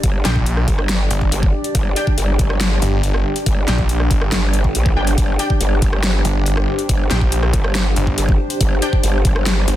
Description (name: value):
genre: heavy wobble dubstep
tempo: 140 BPM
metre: 4/4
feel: half-time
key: unclear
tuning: A4 = 440 Hz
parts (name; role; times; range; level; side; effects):
- supersaw pad; sustained chords; 0.0-9.8 s; D4 to D5; -28 LUFS; right 1 dB; sidechain pumping, low-pass filter
- growl bass; bass; 0.0-9.7 s; G1 to Bb1; -18 LUFS; equal; chorus, overdrive
- dubstep drum kit; drums; 0.0-9.8 s; hi-hat, rim click, snare drum; -23 LUFS; left 1 dB; studio reverb
- electronic kick drum; drums; 0.0-9.3 s; none; -18 LUFS; equal; overdrive, studio reverb
- warbly tape-like pad; texture; 0.0-9.8 s; D4 to G5; -27 LUFS; equal; chorus, built-in reverb, phaser, sidechain pumping
- orchestra-hit-like synth stab; stabs; 0.2-8.9 s; D4 to G5; -26 LUFS; left 2 dB; built-in reverb, dub echo
- snarling distorted saw bass; bass; 0.2-9.8 s; G1 to Bb1; -18 LUFS; equal; distortion, overdrive
room: digital ambience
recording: dense, heavily limited modern master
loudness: -14 LUFS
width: side -13 dB against mid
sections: 0.0-9.8 A section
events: none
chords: 0.0 Gm